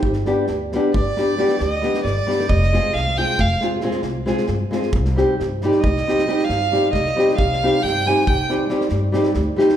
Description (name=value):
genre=balkan folk, Balkan wedding band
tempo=271 BPM (eighths)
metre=11/8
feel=straight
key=C harmonic minor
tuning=A4 = 440 Hz
part: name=upright bass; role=bass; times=0.0-9.5 s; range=F1 to G2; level=-24 LUFS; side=equal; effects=none
part: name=loose indie drum kit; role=percussion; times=0.0-9.7 s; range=kick drum, snare drum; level=-27 LUFS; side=right 1 dB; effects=none
part: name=nylon-string guitar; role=accompaniment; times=0.3-9.7 s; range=G3 to Ab4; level=-19 LUFS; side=equal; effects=none
part: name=rich fiddle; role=melody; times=0.9-8.5 s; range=D5 to Ab5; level=-22 LUFS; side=right 2 dB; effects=none
room=wet recital hall reverb, RT60 1.6 s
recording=recorded in a church or concert hall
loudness=-17 LUFS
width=side -10 dB against mid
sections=0.0-9.8 A section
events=fiddle solo 0.0-9.8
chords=0.0 G; 2.5 Fm; 4.9 Cm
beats=| 0.04 0.27 0.49 0.71 0.94 1.16 1.38 1.60 1.83 2.05 2.27 | 2.50 2.72 2.94 3.16 3.39 3.61 3.83 4.05 4.27 4.50 4.72 | 4.94 5.16 5.38 5.60 5.82 6.05 6.27 6.49 6.71 6.93 7.15 | 7.37 7.59 7.81 8.03 8.25 8.47 8.69 8.91 9.13 9.35 9.57